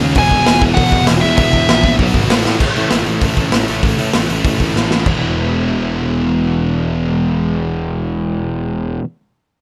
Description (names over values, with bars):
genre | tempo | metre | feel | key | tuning
punk rock | 196 BPM | 4/4 | straight | E major | A4 = 439 Hz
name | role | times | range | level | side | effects
sludgy distorted guitar | riff | 0.0-9.0 s | E2 to C#4 | -23 LUFS | equal | overdrive
sludgy distorted guitar | riff | 0.0-9.0 s | A2 to A4 | -23 LUFS | equal | overdrive
sludgy distorted guitar | riff | 0.0-2.6 s | E2 to C#4 | -24 LUFS | equal | none
fuzz picked electric bass | bass | 0.0-9.0 s | E1 to A2 | -22 LUFS | equal | overdrive
raw garage drum kit | drums | 0.1-5.1 s | crash cymbal, hi-hat, kick drum, snare drum, toms | -19 LUFS | equal | none
nasal lead guitar with a parked wah | melody | 0.2-1.9 s | E5 to G#5 | -17 LUFS | equal | overdrive
room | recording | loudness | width
little or no reverb | none | -15 LUFS | mono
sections
0.0-2.6 A section; 2.6-5.1 B section; 5.1-7.5 C section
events
drum fill 2.5, 4.8-5.1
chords
0.2 E; 2.0 B5; 2.3 A5; 2.6 A; 5.1 E